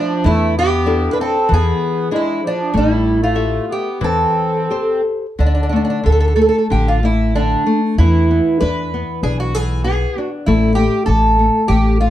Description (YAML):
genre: fado-style ballad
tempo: 85-99 BPM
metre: 4/4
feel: rubato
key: A minor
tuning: A4 = 440 Hz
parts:
  - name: fingerpicked twelve-string acoustic guitar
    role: melody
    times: 0.0-12.1 s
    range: D4 to B4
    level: -18 LUFS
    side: right 2 dB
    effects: none
  - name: musette accordion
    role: second line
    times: 0.0-5.0 s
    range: F3 to D4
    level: -23 LUFS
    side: right 1 dB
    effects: none
  - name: nylon-string guitar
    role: accompaniment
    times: 0.0-12.1 s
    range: D3 to E5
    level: -20 LUFS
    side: left 4 dB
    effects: none
  - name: upright bass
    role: bass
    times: 0.2-12.1 s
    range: A1 to E2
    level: -16 LUFS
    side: equal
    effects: none
room: light reverb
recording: dark, warm production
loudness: -13 LUFS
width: side -12 dB against mid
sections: 0.0-5.4 A section; 5.4-12.1 B section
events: none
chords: 0.2 E7sus4; 1.5 E7; 2.7 Am7; 5.4 D5; 8.0 E5; 10.5 A5